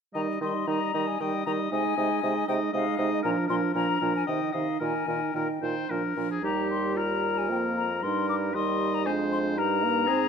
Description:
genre	quick classical-period movement for wind quintet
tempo	109-119 BPM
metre	3/4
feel	rubato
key	Eb major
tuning	A4 = 440 Hz
part	hollow concert flute	melody	0.1-10.3 s	Eb5 to D6	-31 LUFS	left 10 dB	none
part	clear oboe	second line	0.1-10.3 s	G4 to Eb5	-32 LUFS	left 4 dB	none
part	clear French horn	accompaniment	0.1-10.3 s	Eb3 to C4	-32 LUFS	left 1 dB	none
part	dark clarinet	accompaniment	0.1-10.3 s	D4 to F4	-31 LUFS	right 8 dB	none
part	mellow bassoon	bass	0.1-10.3 s	Eb2 to Eb3	-32 LUFS	right 3 dB	none
room	light reverb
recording	close, detailed microphones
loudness	-25 LUFS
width	side -6 dB against mid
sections	0.1-10.3 A section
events	none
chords	0.1 Eb; 1.7 Ab/C; 3.2 Bb; 4.3 Cm; 4.8 Eb/Bb; 5.9 Bb; 6.4 Eb; 8.0 Eb/G; 9.1 Ddim/F; 9.6 Eb/G

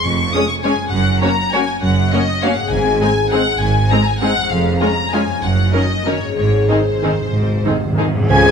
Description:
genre	classical, orchestral ballroom waltz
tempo	179-219 BPM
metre	3/4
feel	rubato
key	unclear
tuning	A4 = 443 Hz
part	rich studio violin section	melody	0.0-8.5 s	C5 to Ab6	-20 LUFS	left 4 dB	none
part	concert harp	arpeggios	0.0-8.5 s	F2 to Ab4	-23 LUFS	left 5 dB	none
part	rich studio double bass section	bass	0.0-8.5 s	F1 to Db2	-21 LUFS	right 3 dB	none
part	rich studio cello section	bass	0.1-8.5 s	F2 to Db3	-22 LUFS	right 2 dB	none
part	dark studio violin section	second line	0.3-8.5 s	Eb4 to Ab5	-24 LUFS	equal	none
part	rich studio viola section	accompaniment	0.3-8.1 s	Eb3 to Db4	-24 LUFS	right 2 dB	none
part	mellow French horn section	sustained chords	0.3-8.5 s	Eb3 to Ab4	-24 LUFS	left 4 dB	none
part	timpani	percussion	2.7-3.1, 6.4-8.3 s	Ab2	-22 LUFS	right 2 dB	none
part	cymbal swell and tam-tam	percussion	6.4-8.5 s	none	-27 LUFS	equal	none
part	clear clarinet	second line	8.3-8.5 s	Ab3	-24 LUFS	left 1 dB	none
part	small flute group	second line	8.3-8.5 s	Ab5	-18 LUFS	left 8 dB	none
part	warm oboe	second line	8.3-8.5 s	Ab5	-18 LUFS	right 4 dB	none
part	mellow bassoon	accompaniment	8.3-8.5 s	F3	-20 LUFS	right 2 dB	none
room	light reverb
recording	none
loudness	-14 LUFS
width	side -6 dB against mid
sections	0.0-8.3 A section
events	timpani fill 6.4-8.3; band accent 8.3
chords	0.0 Db/F; 0.9 Gb; 2.7 Ab; 4.5 Db/F; 5.4 Ebm7/Gb; 6.4 Ab

